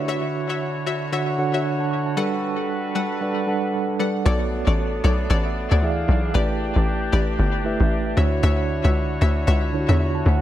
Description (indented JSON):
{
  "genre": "amapiano",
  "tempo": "115 BPM",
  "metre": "4/4",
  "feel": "swing 58% on 16ths",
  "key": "unclear",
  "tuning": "A4 = 440 Hz",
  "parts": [
    { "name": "mellow tine electric piano", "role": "accompaniment", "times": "0.0-10.4 s", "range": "D3 to C#6", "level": "-24 LUFS", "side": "right 3 dB", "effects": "medium stereo tremolo, analog delay" },
    { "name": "warm brass ensemble", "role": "sustained chords", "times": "0.0-10.4 s", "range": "D3 to F5", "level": "-30 LUFS", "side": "left 2 dB", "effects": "none" },
    { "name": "analog pluck", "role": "stabs", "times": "0.0-10.0 s", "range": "G3 to F#5", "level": "-29 LUFS", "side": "left 5 dB", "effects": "chorus, analog delay" },
    { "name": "tight log drum bass", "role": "bass", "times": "4.3-10.4 s", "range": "G1 to E2", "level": "-20 LUFS", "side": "equal", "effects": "none" }
  ],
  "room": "light reverb, digital ambience",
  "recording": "echo-heavy mix",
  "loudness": "-19 LUFS",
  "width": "side -12 dB against mid",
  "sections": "0.0-4.3 A section; 4.3-10.4 B section",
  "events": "tine electric piano fill 2.7-4.3; drop 4.3-10.4",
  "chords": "0.0 Dmaj9; 2.2 Gmaj9; 4.3 Bm9; 5.8 E7b9; 6.3 A9sus4; 8.2 Dmaj9"
}